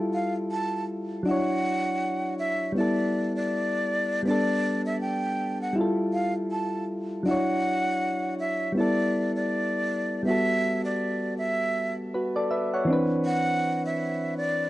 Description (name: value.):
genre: hip hop.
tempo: 80 BPM.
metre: 4/4.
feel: swing 60% on 16ths.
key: unclear.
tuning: A4 = 440 Hz.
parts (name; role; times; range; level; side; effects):
soft electric-piano-like synth keys; accompaniment; 0.0-14.7 s; E3 to F#5; -26 LUFS; equal; chorus.
breathy jazz flute; melody; 0.1-14.7 s; D5 to A5; -28 LUFS; right 1 dB; none.
room: moderate studio reverb, RT60 0.6 s.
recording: cassette tape, nothing above 10.4 kHz.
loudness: -24 LUFS.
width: side -16 dB against mid.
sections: 0.0-10.3 A section; 10.3-14.7 B section.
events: none.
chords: 0.0 Fmaj9; 1.3 Dmaj9; 2.8 G69; 4.3 A9sus4; 5.8 Fmaj9; 7.3 Dmaj9; 8.8 G69; 10.3 Gmaj9; 12.9 Cmaj9.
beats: 0.50 | 1.25 2.00 2.75 3.50 | 4.25 5.00 5.75 6.50 | 7.25 8.00 8.75 9.50 | 10.25 11.00 11.75 12.50 | 13.25 14.00.